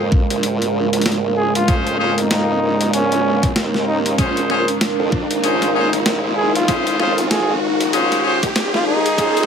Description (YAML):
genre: glitch hop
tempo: 96 BPM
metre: 4/4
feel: swing 59% on 16ths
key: Bb minor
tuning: A4 = 442 Hz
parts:
  - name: dark analog pad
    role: sustained chords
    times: 0.0-9.5 s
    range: Ab3 to Bb4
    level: -24 LUFS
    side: equal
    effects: chorus, sidechain pumping
  - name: formant-sweep wobble bass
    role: bass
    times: 0.0-9.5 s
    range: Ab1 to F2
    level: -24 LUFS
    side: equal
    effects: chorus, high-pass filter
  - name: riser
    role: sound effects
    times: 0.3-9.5 s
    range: none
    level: -24 LUFS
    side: right 1 dB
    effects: none
  - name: deep dark ambient pad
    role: texture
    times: 0.0-9.5 s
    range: Bb4 to C6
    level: -24 LUFS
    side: right 3 dB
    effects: chorus, built-in reverb, sidechain pumping
  - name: electronic kick drum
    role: drums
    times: 0.1-9.3 s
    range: none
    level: -18 LUFS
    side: equal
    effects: none
  - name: boom bap sampler-style drum kit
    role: drums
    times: 0.3-9.5 s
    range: hi-hat, snare drum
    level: -21 LUFS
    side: left 1 dB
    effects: none
  - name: dark trumpet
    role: melody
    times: 1.4-9.5 s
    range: Db4 to Ab4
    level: -21 LUFS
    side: equal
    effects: digital delay
  - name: clear horn section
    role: stabs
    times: 1.7-9.5 s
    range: Db4 to C5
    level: -21 LUFS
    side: left 2 dB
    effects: vintage 12-bit sampler grit, sidechain pumping, low-pass filter, digital delay
room: wet studio reverb, RT60 0.6 s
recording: high-pass filter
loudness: -15 LUFS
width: side -7 dB against mid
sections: 0.0-9.5 A section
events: build-up 0.0-9.5; filter sweep on analog synth pad 0.0-9.5; riser 0.3-9.5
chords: 0.0 Bbm7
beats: 0.43 1.06 | 1.68 2.31 2.93 3.56 | 4.18 4.81 5.43 6.06 | 6.68 7.31 7.93 8.56 | 9.18